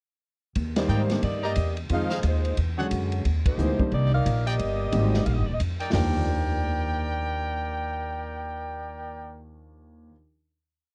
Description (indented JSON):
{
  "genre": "jazz, big band swing",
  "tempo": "179 BPM",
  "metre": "4/4",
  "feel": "swing 62% on 8ths",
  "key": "Eb major",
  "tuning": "A4 = 441 Hz",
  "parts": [
    { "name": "upright bass", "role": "bass", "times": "0.6-10.1 s", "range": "Eb1 to Ab2", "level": "-29 LUFS", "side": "equal", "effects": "none" },
    { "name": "swinging big-band drum kit", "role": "drums", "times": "0.6-6.0 s", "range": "hi-hat, kick drum, ride cymbal, snare drum, toms", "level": "-34 LUFS", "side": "equal", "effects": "none" },
    { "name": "clear saxophone section", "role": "melody", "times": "0.8-5.6 s", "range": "Ab3 to F5", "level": "-32 LUFS", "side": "equal", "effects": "none" },
    { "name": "warm grand piano", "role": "accompaniment", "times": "0.8-10.1 s", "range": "Eb2 to D5", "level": "-34 LUFS", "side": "equal", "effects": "none" },
    { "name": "bright trumpet section", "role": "stabs", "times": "0.9-9.4 s", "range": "D4 to Bb5", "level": "-33 LUFS", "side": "equal", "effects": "none" }
  ],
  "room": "little or no reverb",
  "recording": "cassette tape",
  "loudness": "-26 LUFS",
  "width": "mono",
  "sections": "0.6-5.9 A section; 5.9-8.6 final chord",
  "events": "band accent 0.7, 3.4",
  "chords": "0.6 Ebmaj7; 1.9 Fm7; 2.6 E13; 3.2 Ebmaj7",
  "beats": "| 0.55 0.89 1.23 1.56 | 1.90 2.24 2.57 2.91 | 3.24 3.58 3.92 4.25 | 4.59 4.92 5.26 5.59 | 5.93 6.26 6.60 6.93 | 7.27 7.61 7.94 8.28"
}